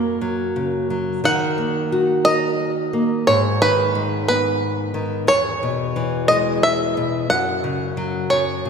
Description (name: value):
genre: children's music, lullaby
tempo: 59 BPM (dotted quarters)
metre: 6/8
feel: straight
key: unclear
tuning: A4 = 439 Hz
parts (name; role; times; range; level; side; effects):
- bluegrass banjo; melody; 0.0-8.7 s; A#4 to F#5; -20 LUFS; right 1 dB; none
- nylon-string guitar; accompaniment; 0.0-8.7 s; E2 to A#4; -21 LUFS; left 1 dB; none
room: wet church reverb, RT60 3.5 s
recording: recorded in a church or concert hall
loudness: -17 LUFS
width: side -6 dB against mid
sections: 0.0-1.2 A section; 1.2-8.7 B section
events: none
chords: 0.0 F#; 1.2 D#m; 3.3 G#m; 5.3 E6; 7.3 F#5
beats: 0.22 | 1.24 2.26 | 3.27 4.29 | 5.29 6.29 | 7.29 8.30